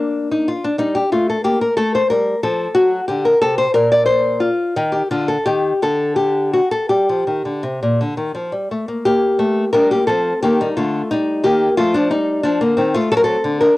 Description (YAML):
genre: classical, baroque-style dance for nylon-string guitar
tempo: 54-63 BPM (dotted quarters)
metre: 6/8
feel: rubato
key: G minor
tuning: A4 = 440 Hz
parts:
  - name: nylon-string guitar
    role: solo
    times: 0.0-13.8 s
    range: Bb2 to D5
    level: -15 LUFS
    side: left 1 dB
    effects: cassette tape
room: light reverb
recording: home recording on cassette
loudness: -15 LUFS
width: side -18 dB against mid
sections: 0.0-9.1 A section; 9.1-13.8 B section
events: none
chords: 0.0 Gm9; 1.8 Fadd9; 2.8 D7; 3.8 N.C.; 4.8 F13; 5.8 N.C.; 6.9 Gm; 13.1 D7